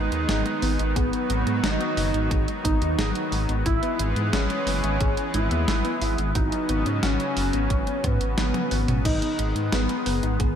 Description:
synthwave; 89 BPM; 4/4; straight; G# minor; A4 = 442 Hz
wide unison lead; melody; 0.0-10.6 s; B3 to E4; -28 LUFS; equal; lush chorus, ping-pong delay
soft synth bell; second line; 0.0-9.5 s; C#4 to E4; -37 LUFS; right 1 dB
lush unison pad; sustained chords; 0.0-10.6 s; C#3 to B3; -29 LUFS; equal; chorus, sidechain pumping
thumb-piano-like synth pluck; arpeggios; 0.0-10.5 s; F#3 to G#4; -34 LUFS; left 5 dB; chorus, ping-pong delay
dark detuned saw bass; bass; 0.0-10.5 s; F#1 to G#2; -26 LUFS; equal; tube saturation
clean 12-bit digital drum machine; drums; 0.1-10.5 s; crash cymbal, hi-hat, snare drum, toms; -29 LUFS; equal; gated reverb
electronic kick drum; drums; 1.0-10.5 s; -26 LUFS; equal
light reverb; bright 1980s-style digital production; -21 LUFS; side -8 dB against mid
0.0-10.6 A section
drum fill 8.4-9.1
0.0 G#m; 3.7 E; 6.4 F#sus4; 9.1 G#m
0.29 | 0.96 1.64 2.31 2.98 | 3.66 4.33 5.01 5.68 | 6.36 7.03 7.70 8.38 | 9.05 9.73 10.40

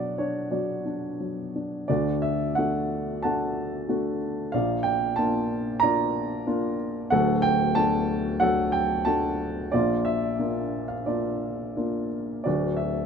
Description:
classical, lyrical solo piano; 91 BPM; 4/4; rubato; A4 = 440 Hz
warm upright piano; solo; 0.0-13.1 s; D1 to Bb5; -24 LUFS; equal
light reverb; dark, warm production; -24 LUFS; side -6 dB against mid
0.0-1.9 A section; 1.9-13.1 B section
0.0 Bm; 1.9 D; 4.5 Bb; 7.1 D; 9.7 Bb; 12.5 D
0.52 1.20 | 1.89 2.57 3.24 3.88 | 4.53 5.18 5.83 6.47 | 7.12 7.76 8.41 9.07 | 9.74 10.40 11.07 11.77 | 12.46

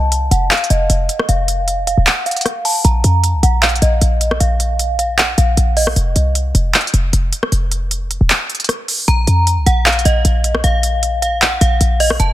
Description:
hip hop, trap; 154 BPM; 4/4; half-time; A4 = 440 Hz
metallic FM bell; melody; 0.0-5.9, 9.1-12.3 s; Eb5 to Bb5; -18 LUFS; right 1 dB; chorus, low-pass filter, tape echo
short 808-style bass; bass; 0.0-12.3 s; Eb1 to F2; -14 LUFS; equal
trap drum kit; drums; 0.1-12.3 s; handclaps, hi-hat, rim click; -16 LUFS; equal
little or no reverb; dense, heavily limited modern master; -12 LUFS; side -14 dB against mid
0.0-12.3 A section
filter sweep on synth bell 0.0-9.1; kick muted 2.1-2.8, 8.3-9.1; break 6.0-9.1
0.0 N.C.; 2.8 Bb5; 6.0 F5; 9.1 Bb5
0.12 0.51 0.90 | 1.29 1.68 2.07 2.46 | 2.85 3.24 3.62 4.01 | 4.41 4.79 5.18 5.57 | 5.96 6.35 6.74 7.13 | 7.52 7.91 8.30 8.69 | 9.08 9.47 9.86 10.25 | 10.64 11.03 11.42 11.81 | 12.20

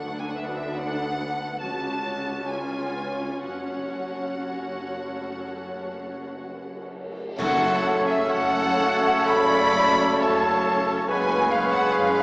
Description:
classical, slow romantic movement for symphony orchestra; 58-72 BPM; 4/4; rubato; F# minor; A4 = 440 Hz
rich studio violin section; melody; 0.0-12.2 s; G#4 to A5; -32 LUFS; equal
dark studio violin section; second line; 0.0-12.2 s; A4 to B5; -28 LUFS; equal
rich chamber viola section; accompaniment; 0.0-12.2 s; A3 to B4; -31 LUFS; equal
concert harp; arpeggios; 0.0-12.2 s; F#2 to A4; -36 LUFS; left 1 dB
rich studio double bass section; bass; 0.0-12.2 s; F#1 to D2; -37 LUFS; equal
rich symphonic cello section; bass; 0.0-12.2 s; C#2 to F#2; -36 LUFS; equal
timpani; percussion; 1.6-8.7 s; F#2 to C#3; -38 LUFS; equal
cymbal swell, clash cymbals and concert bass drum; percussion; 3.4-9.3 s; -38 LUFS; equal
silver concert flute; second line; 7.4-12.2 s; E5 to B5; -28 LUFS; equal
warm oboe; second line; 7.4-12.2 s; C#5; -27 LUFS; equal
warm bassoon; accompaniment; 7.4-12.2 s; A3 to B3; -30 LUFS; equal
clear trombone section; sustained chords; 7.4-12.2 s; C#3 to A3; -29 LUFS; equal
dark French horn section; sustained chords; 7.4-12.2 s; C#4 to G#4; -32 LUFS; equal
warm trumpet section; stabs; 7.4-12.2 s; A4 to B4; -28 LUFS; equal
wet concert hall reverb, RT60 2.0 s; small speaker sound; -21 LUFS; side -30 dB against mid
0.0-7.4 A section; 7.4-12.2 B section
band accent 7.4-8.3
0.0 D6; 1.6 F#m/C#; 2.5 C#7; 3.5 F#m; 11.1 C#7/F#
0.76 1.62 2.51 | 3.45 4.43 5.42 6.40 | 7.38 8.29 9.29 10.21 | 11.09 11.93

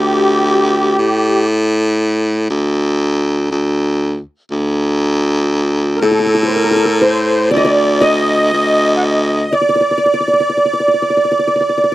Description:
Arabic maqam ensemble; 120 BPM (eighths); 10/8; straight; D maqam hijaz; A4 = 436 Hz
musette accordion; melody; 0.0-11.9 s; G4 to F#5; -14 LUFS; right 1 dB
qanun; second line; 0.0-11.9 s; G4 to Eb5+25c; -19 LUFS; left 1 dB
edgy baritone saxophone; bass; 0.0-9.5 s; D2 to A2; -14 LUFS; equal
studio reverb; dry, close 1970s-style studio recording; -12 LUFS; side -16 dB against mid
0.0-11.9 A section
0.00 0.50 1.00 1.50 2.01 2.51 3.01 3.51 4.01 | 4.51 5.02 5.52 6.02 6.52 7.02 7.53 8.03 8.53 9.03 | 9.53 10.04 10.54 11.04 11.54

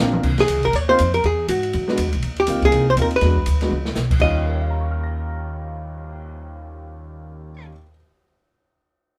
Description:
jazz, small-group swing and bop; 242 BPM; 4/4; swing 59% on 8ths; Eb mixolydian; A4 = 440 Hz
archtop guitar, miked and amplified; melody; 0.0-7.7 s; F4 to Eb5; -22 LUFS; equal
warm concert grand piano; accompaniment; 0.0-7.9 s; Eb2 to Bb6; -29 LUFS; equal
upright bass; bass; 0.0-7.6 s; Ab1 to G#2; -25 LUFS; equal
open jazz drum kit; drums; 0.1-6.1 s; crash cymbal, cymbal swell, hi-hat, kick drum, ride cymbal, snare drum, toms; -27 LUFS; equal
moderate studio reverb, RT60 0.6 s; -20 LUFS; mono
0.2-4.2 A section; 4.2-6.2 B section
drum fill 0.0, 3.7
0.2 Ab6; 1.2 E7; 2.2 Ab69; 3.2 E7; 4.2 Eb7
0.00 | 0.24 0.49 0.74 0.99 | 1.24 1.48 1.73 1.98 | 2.23 2.48 2.72 2.97 | 3.22 3.47 3.71 3.96 | 4.21 4.46 4.71 4.96 | 5.20 5.45 5.70 5.95

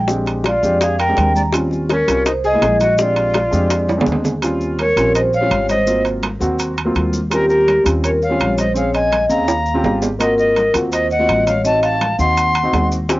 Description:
Afro-Cuban jazz; 166 BPM; 4/4; straight; Eb mixolydian; A4 = 439 Hz
upright bass; bass; 0.0-13.2 s; Ab1 to F2; -22 LUFS; equal
dark upright piano; accompaniment; 0.1-13.2 s; Gb3 to Ab4; -22 LUFS; equal; cassette tape, plate reverb
bongos; percussion; 0.1-4.2, 13.1-13.2 s; -23 LUFS; left 4 dB
congas; percussion; 0.1-13.2 s; -27 LUFS; left 1 dB
maracas; percussion; 0.1-13.2 s; -32 LUFS; left 2 dB
timbales; percussion; 0.3-13.2 s; -23 LUFS; right 4 dB
vibraphone with medium mallets; melody; 0.5-12.9 s; G4 to Bb5; -17 LUFS; equal
breathy bright jazz flute; second line; 0.5-12.9 s; Db4 to C6; -21 LUFS; left 1 dB; cassette tape
moderate booth ambience, RT60 0.2 s; home recording on cassette, nothing above 7.5 kHz; -14 LUFS; side -18 dB against mid
0.0-4.4 A section; 4.4-13.2 A section
drum fill 3.9-4.4, 9.5-10.2
0.1 Bb13; 1.5 Eb13; 2.3 C7alt; 3.0 Bb13; 4.4 Eb13; 5.9 Ab13; 7.3 Eb13; 8.8 Bbm7; 9.5 Eb13; 10.2 Ab13; 11.7 Adim7
| 0.09 0.45 0.81 1.18 | 1.54 1.90 2.26 2.62 | 2.98 3.34 3.70 4.07 | 4.43 4.79 5.15 5.51 | 5.87 6.23 6.59 6.95 | 7.32 7.68 8.04 8.40 | 8.76 9.12 9.48 9.84 | 10.20 10.57 10.93 11.29 | 11.65 12.01 12.37 12.73 | 13.10

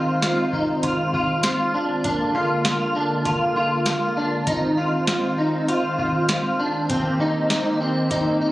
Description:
dream pop; 99 BPM; 4/4; straight; Ab lydian; A4 = 440 Hz
hollow soft pad; sustained chords; 0.0-8.5 s; D3 to C5; -24 LUFS; right 1 dB; chorus
electric guitar at the edge of break-up; arpeggios; 0.0-8.5 s; C4 to F4; -22 LUFS; equal; ensemble chorus, digital delay
booming analog drum machine; drums; 0.2-8.2 s; hi-hat, kick drum, snare drum; -26 LUFS; equal
moderate plate reverb, RT60 2.4 s; recorded on a phone in the room, club reverb, compression; -19 LUFS; side -16 dB against mid
0.0-8.5 A section
0.0 Ab6; 2.0 Bb7; 4.5 Ab6; 6.9 Cm7
0.23 0.83 1.44 | 2.05 2.65 3.26 3.87 | 4.47 5.08 5.68 6.29 | 6.89 7.50 8.11

